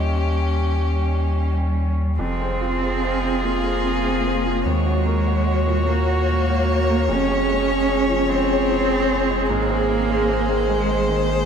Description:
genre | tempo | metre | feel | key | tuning
neoclassical piano and strings | 49 BPM (dotted quarters) | 6/8 | rubato | unclear | A4 = 440 Hz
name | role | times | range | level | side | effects
clear violin | melody | 0.0-11.5 s | G4 to Db5 | -26 LUFS | left 5 dB | none
clear cello | second line | 0.0-11.1 s | G3 to Db4 | -23 LUFS | right 2 dB | none
bright upright piano | accompaniment | 0.0-11.5 s | Eb2 to Eb5 | -26 LUFS | right 2 dB | none
warm viola | accompaniment | 0.0-11.5 s | Db4 to Ab4 | -28 LUFS | right 2 dB | none
warm sub bass | bass | 0.0-11.5 s | F1 to Eb2 | -23 LUFS | equal | none
room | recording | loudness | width
wet cathedral reverb, RT60 6.0 s | in a vast, echoing space | -18 LUFS | side -7 dB against mid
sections
0.0-2.2 A section; 2.2-11.5 B section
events
none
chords
0.0 Eb7; 2.2 Fm; 4.7 Ebm7; 7.1 Db/F; 9.5 Ab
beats
0.87 | 2.20 3.44 | 4.67 5.88 | 7.10 8.30 | 9.50 10.70

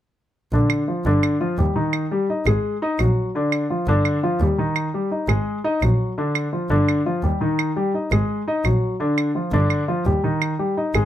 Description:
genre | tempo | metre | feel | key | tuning
Afro-Cuban jazz | 170 BPM | 4/4 | straight | Bb major | A4 = 440 Hz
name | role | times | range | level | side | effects
warm grand piano | accompaniment | 0.5-11.1 s | D3 to Eb5 | -20 LUFS | left 1 dB | none
rich double bass | bass | 0.5-11.0 s | G1 to Eb2 | -20 LUFS | right 1 dB | none
claves | percussion | 0.7-11.1 s | none | -25 LUFS | right 10 dB | none
room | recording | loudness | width
little or no reverb | close, detailed microphones | -19 LUFS | side -12 dB against mid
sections
0.5-11.1 A section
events
none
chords
0.5 Bb (rootless); 1.2 G5; 1.9 Eb; 2.6 Ab5; 3.3 Bb (rootless); 4.1 G5; 4.8 Eb; 5.5 Ab5; 6.2 Bb (rootless); 6.9 G5; 7.6 Eb; 8.3 Ab5; 9.0 Bb (rootless); 9.7 G5; 10.4 Eb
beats
| 0.52 0.88 1.23 1.58 | 1.94 2.29 2.64 2.99 | 3.35 3.70 4.05 4.41 | 4.76 5.11 5.47 5.82 | 6.17 6.53 6.88 7.23 | 7.59 7.94 8.29 8.65 | 9.00 9.35 9.71 10.06 | 10.41 10.77

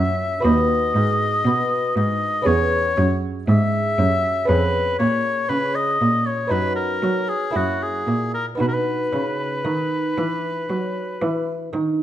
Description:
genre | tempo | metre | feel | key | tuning
classical, baroque-style sonata movement with continuo | 59 BPM | 4/4 | straight | B major | A4 = 440 Hz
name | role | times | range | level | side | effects
warm oboe | melody | 0.0-11.7 s | F#4 to E5 | -22 LUFS | left 2 dB | none
lute | accompaniment | 0.0-12.0 s | D#2 to B4 | -24 LUFS | equal | none
rich cello | bass | 0.0-12.0 s | D#2 to F#3 | -22 LUFS | right 1 dB | none
room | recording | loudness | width
wet stone room reverb, RT60 1.1 s | none | -18 LUFS | side -12 dB against mid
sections
0.0-12.0 A section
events
none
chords
0.4 B/D#; 2.5 C#m7/E; 4.5 C#7/E#; 6.5 B/F#; 7.6 F#7; 8.6 B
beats
| 0.45 1.46 2.47 3.48 | 4.49 5.50 6.52 7.56 | 8.61 9.66 10.70 11.74

